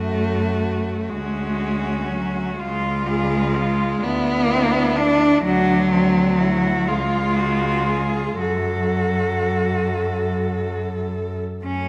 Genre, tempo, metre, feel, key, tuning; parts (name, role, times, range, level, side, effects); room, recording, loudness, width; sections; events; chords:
classical, lyrical piece for cello ensemble; 36-43 BPM (dotted quarters); 6/8; rubato; F# minor; A4 = 441 Hz
warm cello; second line; 0.0-11.9 s; C4 to A4; -29 LUFS; equal
warm cello; accompaniment; 0.0-11.9 s; F#3 to D4; -24 LUFS; equal
rich cello; bass; 0.0-11.9 s; C#2 to F#2; -28 LUFS; equal
rich cello; melody; 1.1-11.9 s; C#4 to G#4; -28 LUFS; equal
moderate scoring stage reverb, RT60 2.0 s; -21 LUFS; mono
0.0-11.6 A section
0.0 F#m; 2.6 C#; 4.0 Bm/D; 5.4 D7; 6.9 C#; 8.4 F#m